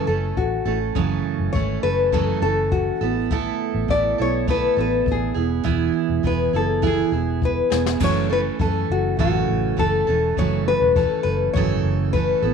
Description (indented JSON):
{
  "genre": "acoustic pop",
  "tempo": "102 BPM",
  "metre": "4/4",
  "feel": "straight",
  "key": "unclear",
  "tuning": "A4 = 440 Hz",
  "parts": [
    { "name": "nylon-string guitar", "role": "melody", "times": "0.0-12.5 s", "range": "F#4 to D5", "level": "-22 LUFS", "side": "left 6 dB", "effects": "none" },
    { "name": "picked steel-string acoustic guitar", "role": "accompaniment", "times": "0.0-12.5 s", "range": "F#2 to A4", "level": "-23 LUFS", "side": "right 11 dB", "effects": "none" },
    { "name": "vintage muted fingered electric bass", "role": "bass", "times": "0.1-12.5 s", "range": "E1 to F#2", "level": "-25 LUFS", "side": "left 1 dB", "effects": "none" },
    { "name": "jazz brush drum kit", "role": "drums", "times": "0.4-12.3 s", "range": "crash cymbal, kick drum, snare drum", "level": "-27 LUFS", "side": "left 4 dB", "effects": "none" }
  ],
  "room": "moderate spring reverb, RT60 1.6 s, small room ambience",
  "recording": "1960s-style stereo with parts hard left and right",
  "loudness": "-18 LUFS",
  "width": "side -6 dB against mid",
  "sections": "0.0-8.0 A section; 8.0-12.5 B section",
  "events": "drum fill 7.4-8.0",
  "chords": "0.0 F#m7; 3.0 Asus2; 5.4 E; 8.0 F#m7",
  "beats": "0.37 | 0.95 1.54 2.13 2.71 | 3.30 3.89 4.48 5.07 | 5.65 6.24 6.83 7.42 | 8.01 8.60 9.19 9.78 | 10.37 10.96 11.54 12.13"
}